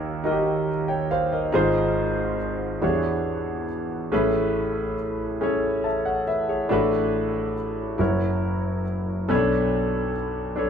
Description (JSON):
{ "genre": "gospel", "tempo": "46 BPM (dotted quarters)", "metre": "6/8", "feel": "straight", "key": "A major from 4.1 s", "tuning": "A4 = 440 Hz", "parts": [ { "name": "warm concert grand piano", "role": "solo", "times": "0.0-10.7 s", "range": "F#1 to A5", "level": "-22 LUFS", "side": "equal", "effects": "none" } ], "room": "wet stone room reverb, RT60 1.0 s", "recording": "band playing live in one room", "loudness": "-22 LUFS", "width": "side -7 dB against mid", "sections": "0.0-4.1 A section; 4.1-10.7 B section", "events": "none", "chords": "0.0 Eb7; 1.5 Ab6; 2.8 E13; 4.1 Amaj9; 6.7 D6/A; 8.0 F#7; 9.3 Bm9" }